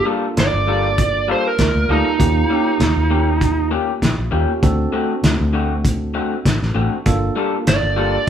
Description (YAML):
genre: straight-eighth soul blues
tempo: 99 BPM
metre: 4/4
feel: swing 54% on 16ths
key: G minor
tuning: A4 = 441 Hz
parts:
  - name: lead guitar through a small cranked amp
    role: melody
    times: 0.0-3.7, 7.7-8.3 s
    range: Eb4 to D5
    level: -18 LUFS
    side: right 4 dB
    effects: overdrive
  - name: barky tine electric piano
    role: accompaniment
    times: 0.0-8.3 s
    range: Bb3 to D5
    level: -25 LUFS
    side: right 3 dB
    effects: overdrive
  - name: electric guitar through a small old amp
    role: stabs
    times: 0.1-8.2 s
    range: D3 to A4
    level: -22 LUFS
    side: left 6 dB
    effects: none
  - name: vintage muted fingered electric bass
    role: bass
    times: 0.4-8.3 s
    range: G1 to Eb2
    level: -20 LUFS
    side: equal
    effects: none
  - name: cloth-damped thuddy drum kit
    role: drums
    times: 0.4-7.8 s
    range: hi-hat, kick drum, snare drum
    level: -18 LUFS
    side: equal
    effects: none
room: moderate studio reverb, RT60 0.8 s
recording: band playing live in one room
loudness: -15 LUFS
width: side -9 dB against mid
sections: 0.0-8.3 A section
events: none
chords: 0.0 Gm9; 2.2 Eb7; 4.6 D7; 7.1 Gm9